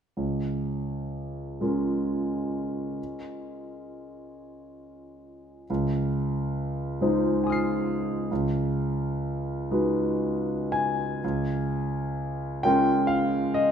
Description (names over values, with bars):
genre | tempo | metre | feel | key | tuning
classical, impressionist solo piano | 37-47 BPM (dotted quarters) | 6/8 | rubato | Db major | A4 = 439 Hz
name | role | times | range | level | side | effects
clear concert grand piano | solo | 0.2-13.7 s | Db2 to C7 | -25 LUFS | equal | none
room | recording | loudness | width
moderate recital hall reverb, RT60 1.8 s | none | -25 LUFS | side -8 dB against mid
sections
0.2-11.2 A section; 11.2-13.7 B section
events
none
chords
0.2 Db6; 5.7 Dbmaj9; 8.3 Cb69/Db; 11.2 Db6